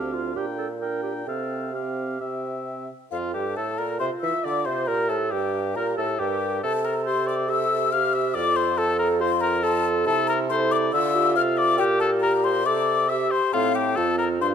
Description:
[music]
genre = quick classical-period movement for wind quintet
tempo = 137 BPM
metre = 4/4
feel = rubato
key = F major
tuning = A4 = 438 Hz
[part]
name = mellow hollow concert flute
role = melody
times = 0.0-14.5 s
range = F5 to F6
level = -27 LUFS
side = left 8 dB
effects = none
[part]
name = warm oboe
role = second line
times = 0.0-14.5 s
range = F4 to G5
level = -27 LUFS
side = left 4 dB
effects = none
[part]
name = mellow French horn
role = accompaniment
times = 0.0-14.5 s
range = C4 to Bb4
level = -28 LUFS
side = equal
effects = none
[part]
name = mellow clarinet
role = accompaniment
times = 0.0-14.5 s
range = C4 to E5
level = -30 LUFS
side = right 9 dB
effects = none
[part]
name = warm bassoon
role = bass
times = 0.0-14.5 s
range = D2 to E3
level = -28 LUFS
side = right 3 dB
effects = none
[sound]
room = moderate scoring stage reverb, RT60 1.7 s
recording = none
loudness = -21 LUFS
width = side -8 dB against mid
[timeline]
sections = 0.0-3.1 A section; 3.1-14.5 B section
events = none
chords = 0.4 Gm/Bb; 1.3 Csus4; 2.2 C; 3.1 F; 4.9 Gm; 6.6 C; 8.4 F; 10.1 Am/C; 10.9 Dm; 11.8 Gm/Bb; 12.7 C5; 13.5 F/A

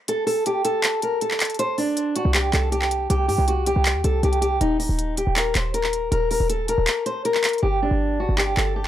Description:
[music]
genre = hip hop, trap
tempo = 159 BPM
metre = 4/4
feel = half-time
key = unclear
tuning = A4 = 440 Hz
[part]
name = fingerpicked steel-string acoustic guitar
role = melody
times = 0.1-8.9 s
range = D4 to C5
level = -22 LUFS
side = equal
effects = low-pass filter
[part]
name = trap drum kit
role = drums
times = 0.1-8.9 s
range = handclaps, hi-hat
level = -24 LUFS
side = equal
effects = none
[part]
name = short 808-style bass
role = bass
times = 2.3-8.9 s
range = D1 to G2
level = -23 LUFS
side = equal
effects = none
[sound]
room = little or no reverb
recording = dry, gritty hardware recording, transformer saturation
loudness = -19 LUFS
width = side -12 dB against mid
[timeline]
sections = 0.0-8.9 A section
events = break 0.0-1.6; kick muted 1.6-2.0, 6.9-7.6; hi-hats muted 7.6-8.9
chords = 0.0 N.C.; 1.6 C5; 4.6 Eb5; 7.6 G5

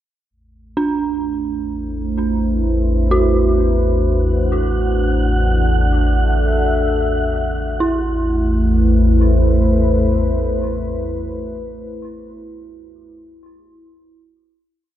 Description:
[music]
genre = dark ambient drone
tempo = free time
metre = none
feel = none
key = A dorian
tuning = A4 = 440 Hz
[part]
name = deep dark ambient pad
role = sustained chords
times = 1.3-12.3 s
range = A3 to F#5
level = -20 LUFS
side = equal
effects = chorus, built-in reverb
[part]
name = deep rumbling drone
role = drone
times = 1.5-12.2 s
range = A1 to E2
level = -17 LUFS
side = equal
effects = built-in reverb, phaser, lush chorus
[part]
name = dark detuned synth bell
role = arpeggios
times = 0.8-14.1 s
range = D4 to F#4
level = -23 LUFS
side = right 3 dB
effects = chorus, analog delay
[part]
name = wind-like tuned noise texture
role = texture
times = 4.5-7.8 s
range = F#5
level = -26 LUFS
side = right 4 dB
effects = built-in reverb
[sound]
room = moderate plate reverb, RT60 2.8 s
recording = echo-heavy mix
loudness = -15 LUFS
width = side -12 dB against mid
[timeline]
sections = 0.3-7.8 A section; 7.8-11.6 final chord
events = none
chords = 0.3 Am

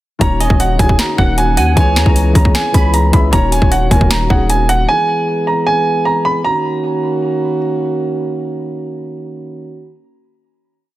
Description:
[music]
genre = hip hop, trap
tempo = 154 BPM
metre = 4/4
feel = half-time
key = Eb phrygian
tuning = A4 = 441 Hz
[part]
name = warm grand piano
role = melody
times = 0.2-7.6 s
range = Gb5 to Cb6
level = -17 LUFS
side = right 2 dB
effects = tape echo
[part]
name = felt-muted upright piano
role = accompaniment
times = 0.2-4.9 s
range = Eb3 to Fb5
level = -19 LUFS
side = left 4 dB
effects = none
[part]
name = dark brass ensemble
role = sustained chords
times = 0.2-9.9 s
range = Eb3 to Ab4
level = -20 LUFS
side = right 2 dB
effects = none
[part]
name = hard-hitting 808-style bass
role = bass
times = 0.2-4.9 s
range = Eb1 to Eb2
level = -14 LUFS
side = equal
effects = none
[part]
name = trap drum kit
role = drums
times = 0.2-4.8 s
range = finger snaps, hi-hat, kick drum, snare drum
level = -14 LUFS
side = equal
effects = overdrive
[part]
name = glassy wavetable pluck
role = second line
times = 0.4-2.9 s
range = Eb5 to Cb6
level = -25 LUFS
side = right 2 dB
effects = chorus, tape echo
[sound]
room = studio reverb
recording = dense, heavily limited modern master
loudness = -11 LUFS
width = side -16 dB against mid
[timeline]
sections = 0.2-6.4 hook; 6.4-9.6 final chord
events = none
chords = 0.2 Ebm7; 1.8 Dbm7; 3.3 Ebm7; 4.9 E; 6.4 Ebm7

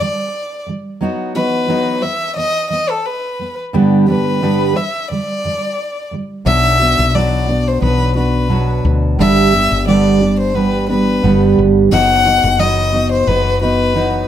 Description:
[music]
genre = acoustic pop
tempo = 88 BPM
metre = 4/4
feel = swing 55% on 16ths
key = unclear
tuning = A4 = 443 Hz
[part]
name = warm violin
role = melody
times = 0.0-14.3 s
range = A4 to F#5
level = -17 LUFS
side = left 2 dB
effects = plate reverb
[part]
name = fingerpicked steel-string acoustic guitar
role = accompaniment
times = 0.0-14.3 s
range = G2 to G4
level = -15 LUFS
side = right 2 dB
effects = none
[part]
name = woody fretless electric bass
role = bass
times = 6.5-14.3 s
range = F#1 to D2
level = -17 LUFS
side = left 1 dB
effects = none
[sound]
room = moderate studio reverb, RT60 0.6 s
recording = none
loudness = -12 LUFS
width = side -10 dB against mid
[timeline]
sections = 0.0-6.5 A section; 6.5-14.3 B section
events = none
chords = 0.0 G5; 1.0 B/F#; 3.7 G; 6.5 Bm; 9.2 G; 11.9 B/F#

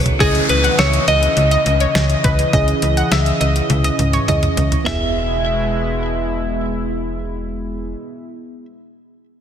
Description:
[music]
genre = synth-pop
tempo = 103 BPM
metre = 4/4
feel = straight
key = unclear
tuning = A4 = 441 Hz
[part]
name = FM electric piano with auto-pan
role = accompaniment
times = 0.0-8.7 s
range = B3 to C#5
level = -26 LUFS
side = right 4 dB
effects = none
[part]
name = chorused pulse-width pad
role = sustained chords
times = 0.0-8.0 s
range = B2 to D#5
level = -24 LUFS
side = left 1 dB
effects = none
[part]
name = slap-like FM bass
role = bass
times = 0.0-8.0 s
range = E1 to C#2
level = -19 LUFS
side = equal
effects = none
[part]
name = detuned 8-bit digital drum machine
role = drums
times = 0.1-5.0 s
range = hi-hat, kick drum, snare drum, toms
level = -21 LUFS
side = equal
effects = soft clipping on snare
[part]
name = direct-recorded clean electric guitar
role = melody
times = 0.2-8.7 s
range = G#4 to E5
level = -20 LUFS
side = equal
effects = digital delay
[part]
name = analog pluck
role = second line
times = 0.2-6.6 s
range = B4 to F#5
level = -22 LUFS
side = equal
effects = chorus, digital delay
[part]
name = downlifter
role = sound effects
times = 0.2-4.9 s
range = none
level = -25 LUFS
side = left 1 dB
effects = none
[sound]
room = moderate lush hall reverb, RT60 2.7 s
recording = dense, heavily limited modern master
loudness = -14 LUFS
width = side -8 dB against mid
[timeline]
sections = 0.2-4.9 A section; 4.9-7.2 B section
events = drum fill 0.0, 3.7-4.9; FM electric piano fill 0.0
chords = 0.2 C#madd9; 4.9 E

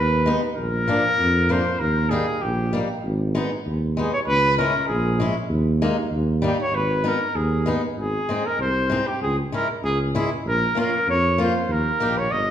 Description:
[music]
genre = alpine folk, alpine dance band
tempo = 97 BPM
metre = 2/4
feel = straight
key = G# harmonic minor, Ab major from 8.0 s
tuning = A4 = 440 Hz
[part]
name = warm trumpet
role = melody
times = 0.0-12.5 s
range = G4 to Eb5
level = -22 LUFS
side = equal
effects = none
[part]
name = mellow tuba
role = bass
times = 0.0-12.5 s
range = G1 to F2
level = -24 LUFS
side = right 1 dB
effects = none
[part]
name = picked swing-style acoustic guitar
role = accompaniment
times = 0.3-12.1 s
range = E#3 to G4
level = -26 LUFS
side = left 2 dB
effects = none
[sound]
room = wet recital hall reverb, RT60 1.5 s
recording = recorded in a church or concert hall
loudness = -19 LUFS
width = side -10 dB against mid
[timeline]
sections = 0.0-8.0 A section; 8.0-12.5 B section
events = none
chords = 0.0 G#m; 0.6 A#; 1.8 D#; 3.0 G#m; 4.3 C#m; 5.5 D#sus4; 6.1 D#; 6.7 G#m; 8.0 Ab; 9.2 Dbm; 10.4 Bbm; 11.7 Eb

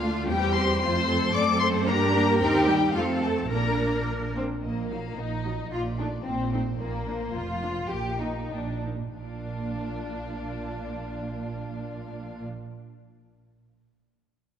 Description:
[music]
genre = quick classical-period movement for string orchestra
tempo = 92-114 BPM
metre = 2/4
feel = straight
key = Bb major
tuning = A4 = 439 Hz
[part]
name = rich chamber violin section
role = melody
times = 0.0-12.4 s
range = G4 to D6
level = -31 LUFS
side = left 7 dB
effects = none
[part]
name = clear symphonic violin section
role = second line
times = 0.0-12.5 s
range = Bb3 to D5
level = -31 LUFS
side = left 2 dB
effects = none
[part]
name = rich chamber viola section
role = accompaniment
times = 0.0-12.5 s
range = Gb3 to F4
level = -29 LUFS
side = equal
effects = none
[part]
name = rich symphonic cello section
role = bass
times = 0.0-12.4 s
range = F2 to Bb4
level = -34 LUFS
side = right 3 dB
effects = none
[part]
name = warm chamber double bass section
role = bass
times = 0.0-12.5 s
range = F1 to G2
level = -32 LUFS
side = right 3 dB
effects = none
[sound]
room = wet concert hall reverb, RT60 2.2 s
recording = dark, warm production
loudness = -24 LUFS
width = side -9 dB against mid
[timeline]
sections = 0.0-4.6 A section; 4.6-9.2 B section; 9.2-11.7 C section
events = slowing down 6.2-9.2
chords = 0.3 C/E; 0.8 F; 1.3 D7/F#; 1.9 Gm; 2.4 Cm7/Eb; 3.0 F; 3.5 Bb; 4.6 Ebm/Bb; 5.7 Bbmaj9; 6.8 Bb; 7.9 Eb5/Bb; 9.2 Bb

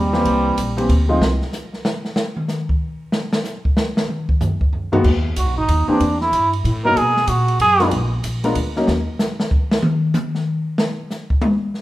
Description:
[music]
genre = jazz, small-group swing and bop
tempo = 188 BPM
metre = 3/4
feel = swing 64% on 8ths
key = unclear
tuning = A4 = 442 Hz
[part]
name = trombone with metal mute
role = second line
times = 0.0-0.9, 5.4-7.9 s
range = G3 to A#4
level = -18 LUFS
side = right 2 dB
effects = none
[part]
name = upright bass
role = bass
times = 0.0-1.4, 5.0-9.1 s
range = G#1 to B2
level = -20 LUFS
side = equal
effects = none
[part]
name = warm grand piano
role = accompaniment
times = 0.1-1.2, 4.9-8.9 s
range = Eb3 to A#4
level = -20 LUFS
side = left 1 dB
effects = none
[part]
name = open jazz drum kit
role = drums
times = 0.1-11.8 s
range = crash cymbal, hi-hat, kick drum, ride cymbal, snare drum, toms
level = -20 LUFS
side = equal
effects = none
[sound]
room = moderate large studio reverb, RT60 1.2 s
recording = band playing live in one room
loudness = -16 LUFS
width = side -16 dB against mid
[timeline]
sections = 0.0-5.0 A section; 5.0-11.8 A section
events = trombone solo 0.0-11.8; drum solo 1.2-5.0, 8.9-11.8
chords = 0.3 C7; 1.2 N.C.; 4.1 Ebm; 5.0 N.C.; 6.0 Emadd9; 7.0 B5; 7.9 A#; 8.9 N.C.

